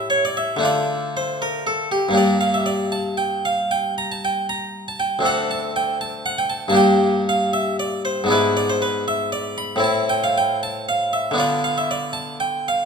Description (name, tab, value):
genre	classical, baroque-style suite movement for harpsichord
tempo	78 BPM (dotted quarters)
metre	12/8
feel	rubato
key	A minor from 8.3 s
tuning	A4 = 439 Hz
part	harpsichord	solo	0.0-12.9 s	D2 to B5	-18 LUFS	equal	none
room	wet recital hall reverb, RT60 1.6 s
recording	none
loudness	-18 LUFS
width	side -6 dB against mid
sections	0.0-12.9 A section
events	none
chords	0.0 A5; 0.6 Dm; 2.2 Gm; 5.2 D5; 6.8 Gm; 8.3 E7/G#; 9.8 Am; 11.4 Bdim/D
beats	0.62 1.41 | 2.17 2.93 3.71 4.47 | 5.24 6.00 6.75 7.53 | 8.30 9.07 9.83 10.62 | 11.38 12.15